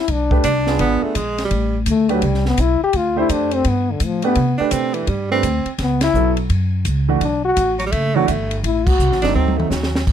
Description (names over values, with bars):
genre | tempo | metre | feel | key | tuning
jazz, small-group swing and bop | 168 BPM | 4/4 | swing 63% on 8ths | unclear | A4 = 442 Hz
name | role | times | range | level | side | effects
warm trombone | melody | 0.0-9.2 s | D3 to G4 | -19 LUFS | left 4 dB | none
upright bass | bass | 0.1-10.1 s | F#1 to C3 | -20 LUFS | equal | none
compact cocktail drum kit | drums | 0.1-10.1 s | crash cymbal, hi-hat, kick drum, ride cymbal, snare drum, toms | -24 LUFS | equal | none
warm concert grand piano | accompaniment | 0.3-9.7 s | E3 to C5 | -21 LUFS | right 7 dB | none
clear tenor saxophone | second line | 0.4-1.8, 4.6-10.0 s | E3 to D4 | -21 LUFS | right 3 dB | none
room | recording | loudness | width
little or no reverb | close, detailed microphones | -16 LUFS | side -9 dB against mid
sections
0.0-10.1 A section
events
band accent 6.0, 8.8; drum fill 9.4-10.1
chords
0.1 Bm7b5; 0.8 Bb7b9/Ab; 1.5 Am9; 2.9 Dm7; 3.7 Gadd9; 4.4 Csus2; 5.8 B9sus4; 6.5 F#5; 7.2 B7(no3); 8.6 Am7; 9.4 D7b9